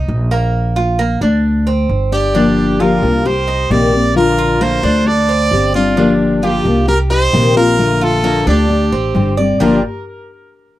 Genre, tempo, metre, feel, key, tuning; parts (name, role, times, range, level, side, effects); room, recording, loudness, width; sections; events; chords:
latin; 132 BPM; 4/4; straight; G minor; A4 = 440 Hz
Cuban tres; arpeggios; 0.0-9.8 s; G3 to D5; -20 LUFS; right 2 dB
upright bass; bass; 0.0-9.8 s; G1 to D2; -16 LUFS; equal
brilliant trumpet; melody; 2.1-9.8 s; F4 to D5; -17 LUFS; right 2 dB; tape echo
nylon-string guitar; second line; 2.1-9.8 s; D4 to Bb4; -22 LUFS; left 4 dB
fingerpicked steel-string acoustic guitar; accompaniment; 2.3-9.8 s; G2 to G4; -15 LUFS; left 3 dB
light reverb; dry, close 1970s-style studio recording; -11 LUFS; side -14 dB against mid
0.0-9.6 A section; 9.6-10.8 B section
0.0 Cm7 (rootless); 0.5 Bb; 1.4 D7sus4; 2.3 Gm7; 3.3 Cm7; 4.2 Bbmaj7; 5.1 D7sus4; 6.0 Gm7; 6.9 Cm7; 7.8 Bbmaj7; 8.7 D7sus4; 9.6 Gm7